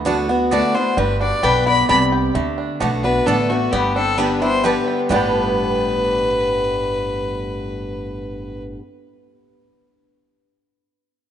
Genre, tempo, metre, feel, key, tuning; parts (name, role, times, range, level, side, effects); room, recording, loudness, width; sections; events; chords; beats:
bluegrass; 131 BPM; 3/4; straight; G major; A4 = 440 Hz
bluegrass banjo; melody; 0.0-8.8 s; G3 to G4; -25 LUFS; right 4 dB
picked steel-string acoustic guitar; accompaniment; 0.0-8.8 s; G2 to G4; -22 LUFS; left 1 dB
upright bass; bass; 0.0-8.8 s; G1 to D2; -26 LUFS; right 1 dB
mandolin; stabs; 0.1-8.8 s; B3 to A5; -28 LUFS; right 7 dB
clear fiddle; melody; 0.5-8.6 s; F#4 to B5; -20 LUFS; left 2 dB
lap resonator guitar; second line; 0.5-8.8 s; A3 to D5; -24 LUFS; left 3 dB
moderate plate reverb, RT60 3.0 s; rough home demo mix, nothing above 11.0 kHz; -16 LUFS; side -9 dB against mid
0.0-2.3 A section; 2.3-5.1 B section; 5.1-7.9 C section
0.0 D6; 1.0 Gadd9; 2.3 D6; 3.7 Gadd9
0.06 0.52 | 0.97 1.43 1.89 | 2.35 2.81 3.27 | 3.73 4.18 4.64 | 5.10 5.56 6.02 | 6.48 6.94 7.39